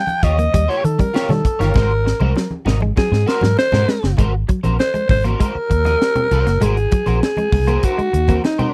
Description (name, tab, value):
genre	funk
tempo	99 BPM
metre	4/4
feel	straight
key	unclear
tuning	A4 = 440 Hz
part	breathy alto saxophone	melody	0.0-8.7 s	Eb4 to G5	-22 LUFS	equal	none
part	semi-hollow electric guitar	riff	0.0-8.7 s	Eb3 to C4	-27 LUFS	equal	none
part	tight funk drum kit	drums	0.1-8.7 s	hi-hat, kick drum, snare drum	-21 LUFS	equal	none
part	congas	percussion	0.1-8.7 s	none	-28 LUFS	equal	none
part	electric guitar at the edge of break-up	accompaniment	0.2-8.7 s	F4 to Eb5	-28 LUFS	equal	ensemble chorus
part	vintage muted fingered electric bass	bass	0.2-8.4 s	Gb1 to Eb3	-20 LUFS	equal	none
room	little or no reverb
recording	dry, close 1970s-style studio recording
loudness	-17 LUFS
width	mono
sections	0.0-4.2 A section; 4.2-8.7 B section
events	alto saxophone solo 0.0-4.2; drum fill 1.8-4.2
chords	0.0 Eb9; 1.8 Ab9